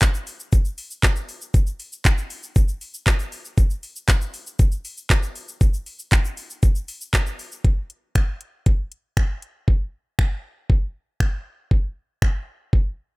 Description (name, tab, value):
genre	pop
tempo	118 BPM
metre	4/4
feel	straight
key	none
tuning	none
part	smooth R&B drum kit	drums	0.0-12.8 s	finger snaps, handclaps, hi-hat, kick drum, shaker	-18 LUFS	equal	none
part	tube shaker	percussion	0.0-7.6 s	none	-42 LUFS	left 5 dB	none
room	little or no reverb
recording	none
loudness	-20 LUFS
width	side -25 dB against mid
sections	0.0-7.6 A section; 7.6-11.7 B section; 11.7-13.2 C section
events	none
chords	none